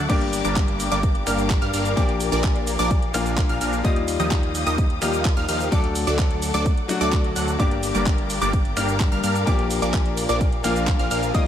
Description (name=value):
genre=EDM, festival progressive house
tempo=128 BPM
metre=4/4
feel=straight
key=G minor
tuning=A4 = 440 Hz
part: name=warm studio string section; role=sustained chords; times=0.0-11.5 s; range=G4 to Eb6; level=-32 LUFS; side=left 3 dB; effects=sidechain pumping
part: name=wide unison pluck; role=arpeggios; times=0.0-11.5 s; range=D6 to F#6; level=-29 LUFS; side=equal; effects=sidechain pumping, digital delay
part: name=supersaw stab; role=riff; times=0.0-11.5 s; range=F3 to F#5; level=-27 LUFS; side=right 1 dB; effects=phaser, sidechain pumping, digital delay
part: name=fat analog bass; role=bass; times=0.0-11.5 s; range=G1 to G2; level=-28 LUFS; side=equal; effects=sidechain pumping
part: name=bright baby grand piano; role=accompaniment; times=0.1-11.5 s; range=G2 to A4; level=-27 LUFS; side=left 5 dB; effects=sidechain pumping, digital delay
part: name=electronic kick drum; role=drums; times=0.1-11.4 s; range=none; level=-21 LUFS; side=equal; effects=overdrive
part: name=pop drum kit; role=drums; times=0.1-11.4 s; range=crash cymbal, finger snaps, handclaps, hi-hat, ride cymbal, shaker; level=-31 LUFS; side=right 2 dB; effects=none
room=light reverb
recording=none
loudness=-19 LUFS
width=side -10 dB against mid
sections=0.0-11.5 A section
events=none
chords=0.1 Gm; 2.0 Bb; 3.8 Ebadd9; 5.7 D; 7.6 Gm; 9.5 Bb